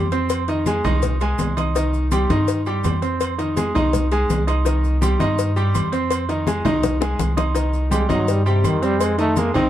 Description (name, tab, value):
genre	latin, salsa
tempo	165 BPM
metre	4/4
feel	straight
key	C minor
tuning	A4 = 439 Hz
part	bright concert grand piano	accompaniment	0.0-9.7 s	Eb3 to Eb6	-22 LUFS	equal	none
part	upright bass	bass	0.0-9.7 s	C2 to G2	-22 LUFS	equal	none
part	congas	percussion	0.1-9.7 s	none	-26 LUFS	left 2 dB	none
part	cowbell and bongos	percussion	0.1-9.6 s	none	-28 LUFS	left 8 dB	none
part	maracas	percussion	0.1-9.7 s	none	-37 LUFS	left 6 dB	none
part	agogo bells and timbales	percussion	0.3-9.7 s	none	-30 LUFS	right 8 dB	none
part	bright trombone	melody	7.9-9.7 s	C3 to C4	-21 LUFS	equal	none
room	light reverb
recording	dark, warm production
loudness	-17 LUFS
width	side -12 dB against mid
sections	0.0-7.6 A section; 7.6-9.7 B section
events	drum fill 6.5-7.6; trombone solo 7.6-9.7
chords	0.3 Fm7; 1.8 Cm; 3.2 Fm7; 4.7 Cm; 6.1 Fm7; 7.6 Cm; 9.0 Fm7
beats	| 0.30 0.67 1.03 1.39 | 1.75 2.12 2.48 2.84 | 3.21 3.57 3.93 4.29 | 4.66 5.02 5.38 5.75 | 6.11 6.47 6.83 7.20 | 7.56 7.92 8.28 8.64 | 9.01 9.37